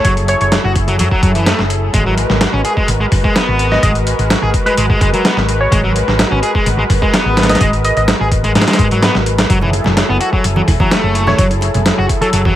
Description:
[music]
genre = breakbeat, breaks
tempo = 127 BPM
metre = 4/4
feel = straight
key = unclear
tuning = A4 = 442 Hz
[part]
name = glassy wavetable pluck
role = melody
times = 0.0-0.5, 3.7-8.0, 11.3-12.3 s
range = A4 to D#5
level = -19 LUFS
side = equal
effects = chorus, telephone sound, ping-pong delay
[part]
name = lush unison pad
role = sustained chords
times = 0.0-12.6 s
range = F#3 to B4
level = -20 LUFS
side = equal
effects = chorus, sidechain pumping
[part]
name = sludgy distorted guitar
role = riff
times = 0.0-12.6 s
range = E3 to G#4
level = -18 LUFS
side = equal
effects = overdrive, ping-pong delay
[part]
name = hollow-body short-scale fingered electric bass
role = bass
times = 0.0-12.5 s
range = E1 to G#2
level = -16 LUFS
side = equal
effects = none
[part]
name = dusty soul sampler-style drum kit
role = drums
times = 0.0-12.6 s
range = hi-hat, kick drum, snare drum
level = -15 LUFS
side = equal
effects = overdrive
[part]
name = bongos and congas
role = percussion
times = 9.6-12.5 s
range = none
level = -21 LUFS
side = right 2 dB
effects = none
[sound]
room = little or no reverb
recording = vinyl crackle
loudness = -11 LUFS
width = side -12 dB against mid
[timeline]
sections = 0.0-12.6 A section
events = none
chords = 0.0 F#m9; 1.9 G#m9; 9.5 F#m9

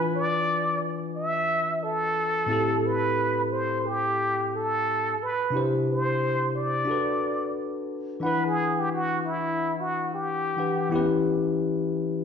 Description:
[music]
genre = hip hop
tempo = 89 BPM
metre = 4/4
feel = swing 64% on 16ths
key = E minor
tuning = A4 = 440 Hz
[part]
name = trumpet with plunger mute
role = melody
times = 0.0-11.1 s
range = E4 to E5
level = -26 LUFS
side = right 1 dB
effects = none
[part]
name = bell-like tine electric piano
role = accompaniment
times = 0.0-12.2 s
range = A2 to G#5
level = -27 LUFS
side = left 2 dB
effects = none
[sound]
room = wet large studio reverb, RT60 1.3 s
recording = band playing live in one room, nothing above 10.8 kHz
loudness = -24 LUFS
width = side -7 dB against mid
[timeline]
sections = 0.0-8.2 A section; 8.2-12.2 B section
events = muted trumpet solo 8.2-12.2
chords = 0.0 E7b9; 2.5 Am9; 5.5 C; 6.9 Bm7; 8.2 Em7; 10.9 Em6

